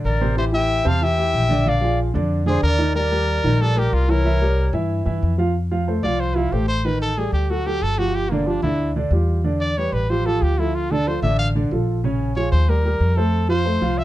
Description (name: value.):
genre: jazz.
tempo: 185 BPM.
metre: 4/4.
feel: straight.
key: F major.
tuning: A4 = 439 Hz.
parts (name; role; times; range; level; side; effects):
warm baby grand piano; accompaniment; 0.0-14.0 s; C3 to F5; -23 LUFS; right 1 dB; none.
upright bass; bass; 0.0-14.0 s; G1 to G2; -21 LUFS; equal; none.
bright trumpet; melody; 0.1-14.0 s; Bb3 to F5; -24 LUFS; left 1 dB; none.
silver concert flute; second line; 0.1-4.7 s; Bb4 to A5; -27 LUFS; equal; none.
room: light reverb.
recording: dark, warm production.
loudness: -18 LUFS.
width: side -15 dB against mid.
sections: 0.0-5.5 A section; 5.5-14.0 B section.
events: trumpet solo 5.5-14.0.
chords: 0.4 Am7; 1.7 Bb7; 3.0 Ebmaj7; 4.3 C7b9; 5.5 F; 6.8 B7alt/A; 7.5 D; 8.1 G5; 9.4 Em7; 10.1 Fmaj13/A; 10.7 Dm; 12.0 Bbm7; 12.7 Ebadd9; 13.3 F.